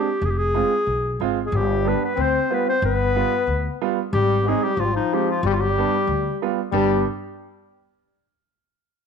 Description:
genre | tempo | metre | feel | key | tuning
klezmer | 92 BPM | 2/4 | straight | G phrygian dominant | A4 = 440 Hz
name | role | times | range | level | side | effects
warm clarinet | melody | 0.0-7.1 s | Eb4 to C5 | -23 LUFS | equal | slapback echo
clear upright piano | accompaniment | 0.0-7.0 s | G3 to F4 | -26 LUFS | right 12 dB | none
upright bass | bass | 0.2-7.0 s | F1 to D2 | -24 LUFS | left 1 dB | none
clear trombone | second line | 1.4-7.0 s | F3 to C4 | -25 LUFS | left 12 dB | slapback echo
room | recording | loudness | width
moderate echo chamber reverb, RT60 1.3 s, small room ambience | 1960s-style stereo with parts hard left and right | -19 LUFS | side -6 dB against mid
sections
0.0-6.7 A section; 6.7-8.0 B section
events
none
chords
0.2 Fm; 1.5 G; 4.1 Ab; 5.4 G

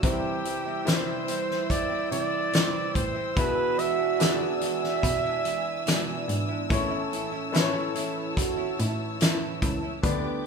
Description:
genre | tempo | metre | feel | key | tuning
pop ballad | 72 BPM | 4/4 | straight | unclear | A4 = 439 Hz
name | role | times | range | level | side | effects
warm flugelhorn | melody | 0.0-6.3 s | G4 to E5 | -29 LUFS | right 2 dB | none
dark French horn section | second line | 0.0-10.5 s | C#4 to F#4 | -32 LUFS | right 5 dB | ping-pong delay
warm baby grand piano | accompaniment | 0.0-10.5 s | A2 to D5 | -34 LUFS | left 5 dB | none
warm studio string section | sustained chords | 0.0-10.5 s | B4 to E6 | -35 LUFS | left 4 dB | none
nylon-string guitar | arpeggios | 0.0-10.5 s | A2 to G4 | -35 LUFS | right 6 dB | none
dark cello | bass | 0.0-10.5 s | C#2 to C3 | -33 LUFS | equal | none
loose indie drum kit | drums | 0.0-10.2 s | hi-hat, kick drum, snare drum | -27 LUFS | left 1 dB | none
room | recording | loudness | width
moderate large studio reverb, RT60 1.1 s | band playing live in one room | -24 LUFS | side -5 dB against mid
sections
0.0-10.5 A section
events
none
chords
0.0 C; 3.4 E7/B; 6.7 A

